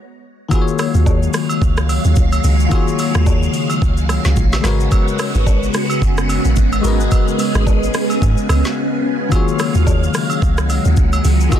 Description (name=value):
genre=amapiano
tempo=109 BPM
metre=4/4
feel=swing 58% on 16ths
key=Eb minor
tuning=A4 = 441 Hz
part: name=bell-like tine electric piano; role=accompaniment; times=0.5-11.6 s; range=Eb3 to Eb5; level=-21 LUFS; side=left 7 dB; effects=phaser
part: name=phased string machine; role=sustained chords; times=0.5-11.6 s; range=Db3 to F5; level=-20 LUFS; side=right 1 dB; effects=ensemble chorus, phaser, sidechain pumping
part: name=smooth R&B drum kit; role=drums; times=0.5-11.6 s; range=hi-hat, kick drum, rim click, shaker, snare drum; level=-18 LUFS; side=equal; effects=soft clipping on snare
part: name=agogo bells and woodblock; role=percussion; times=0.5-11.6 s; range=none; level=-27 LUFS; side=right 5 dB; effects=none
part: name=deep log drum bass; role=bass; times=0.9-11.5 s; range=Gb1 to Ab2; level=-15 LUFS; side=equal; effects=none
room=little or no reverb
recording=dense, heavily limited modern master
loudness=-13 LUFS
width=side -10 dB against mid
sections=0.5-11.6 A section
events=stop 0.0-0.5; drop 0.5-11.6; break 8.8-9.3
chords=0.0 N.C.; 0.5 Ebm11; 4.6 Abm11; 9.3 Ebm11